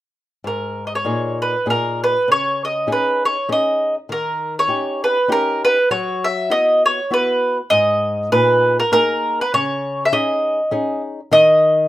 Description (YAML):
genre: italian folk, Italian serenade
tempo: 100 BPM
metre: 3/4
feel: swing 55% on 8ths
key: G# minor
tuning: A4 = 440 Hz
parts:
  - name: flamenco guitar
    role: accompaniment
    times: 0.4-11.9 s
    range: G#2 to G#4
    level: -24 LUFS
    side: left 2 dB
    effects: none
  - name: mandolin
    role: melody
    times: 0.5-11.9 s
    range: A#4 to E5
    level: -16 LUFS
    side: right 1 dB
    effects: none
room: wet studio reverb, RT60 0.6 s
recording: rough home demo mix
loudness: -15 LUFS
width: side -15 dB against mid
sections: 0.4-7.7 A section; 7.7-11.9 B section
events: none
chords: 0.4 G#sus2; 2.3 C#sus2; 4.1 D#7; 5.9 F#7sus4; 7.7 G#sus2; 9.5 C#sus2; 11.3 N.C.